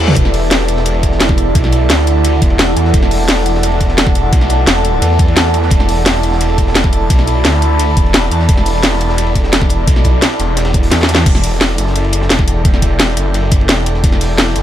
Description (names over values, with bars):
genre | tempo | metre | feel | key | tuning
dark technical drum and bass | 173 BPM | 4/4 | straight | E minor | A4 = 440 Hz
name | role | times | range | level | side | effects
deep dark ambient pad | sustained chords | 0.0-11.2 s | E4 to B5 | -21 LUFS | equal | chorus, built-in reverb, sidechain pumping
snarling distorted saw bass | bass | 0.0-14.6 s | E1 to E2 | -14 LUFS | equal | distortion, tube saturation
crunchy breakbeat drum kit | drums | 0.0-14.6 s | hi-hat, ride cymbal, snare drum | -26 LUFS | equal | high-pass filter on cymbals, high-pass filter on hats, high-pass filter on snare, high-pass filter on room
airy breathy pad | texture | 0.0-14.6 s | E4 to A5 | -19 LUFS | right 2 dB | chorus, sidechain pumping
drum and bass drum kit | drums | 0.1-14.6 s | crash cymbal, hi-hat, snare drum, toms | -14 LUFS | equal | none
electronic kick drum | drums | 0.2-14.1 s | none | -13 LUFS | equal | overdrive
room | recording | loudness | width
light reverb | none | -10 LUFS | side -11 dB against mid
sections
0.0-11.3 A section; 11.3-14.6 A section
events
drop 0.0-11.3, 11.3-14.6; drum fill 0.0, 10.9-11.3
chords
0.0 Emadd9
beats
| 0.16 0.51 0.86 1.21 | 1.55 1.90 2.25 2.59 | 2.94 3.29 3.63 3.98 | 4.33 4.67 5.02 5.37 | 5.71 6.06 6.41 6.75 | 7.10 7.45 7.79 8.14 | 8.49 8.84 9.18 9.53 | 9.88 10.22 10.57 10.92 | 11.26 11.61 11.96 12.30 | 12.65 13.00 13.34 13.69 | 14.04 14.38